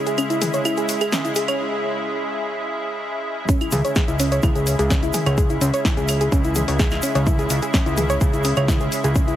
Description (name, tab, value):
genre	melodic techno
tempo	127 BPM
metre	4/4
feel	straight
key	C# minor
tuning	A4 = 439 Hz
part	lush unison pad	sustained chords	0.0-9.4 s	C#3 to E4	-25 LUFS	equal	chorus, sidechain pumping
part	overtone-sweeping drone	drone	0.0-1.6 s	none	barely audible	none	none
part	soft round pluck	arpeggios	0.1-9.3 s	C#4 to C#5	-24 LUFS	equal	chorus, sidechain pumping, digital delay
part	house drum kit	drums	0.1-9.4 s	claves, hi-hat, snare drum, toms	-26 LUFS	equal	small room ambience
part	egg shaker	percussion	0.1-9.4 s	none	-33 LUFS	right 1 dB	none
part	electronic kick drum	drums	3.5-9.3 s	none	-20 LUFS	equal	small room ambience
part	fat analog bass	bass	3.7-9.4 s	C#2	-22 LUFS	equal	sidechain pumping
room	light reverb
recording	heavily compressed radio sound, high-pass filter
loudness	-18 LUFS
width	side -12 dB against mid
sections	0.0-3.5 A section; 3.5-9.4 B section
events	build-up 0.0-3.5; filter sweep on synth arpeggio sound 0.0-3.5; break 1.6-3.5; drop 3.5-9.4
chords	0.0 C#m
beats	0.18 0.65 1.12 | 1.60 2.07 2.54 3.01 | 3.49 3.96 4.43 4.90 | 5.38 5.85 6.32 6.79 | 7.27 7.74 8.21 8.68 | 9.15